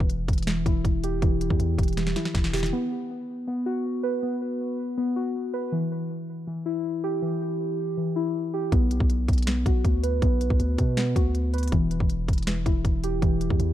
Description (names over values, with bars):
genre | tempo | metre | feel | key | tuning
hip hop, trap | 160 BPM | 4/4 | half-time | B minor | A4 = 440 Hz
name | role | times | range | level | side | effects
muted felt-like synth keys | arpeggios | 0.0-13.7 s | E3 to B4 | -27 LUFS | left 1 dB | chorus, ping-pong delay
long sustained 808-style bass | bass | 0.0-2.7, 8.7-13.7 s | E1 to B2 | -27 LUFS | equal | none
trap drum kit | drums | 0.0-2.7, 8.7-13.7 s | hi-hat, kick drum, snare drum | -24 LUFS | equal | none
room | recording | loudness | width
light reverb | dark, warm production | -23 LUFS | side -12 dB against mid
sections
0.0-2.7 A section; 2.7-13.7 A section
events
drum fill 2.0-2.7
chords
0.0 Em; 2.7 B5; 5.7 Em; 8.7 Bm; 11.7 Em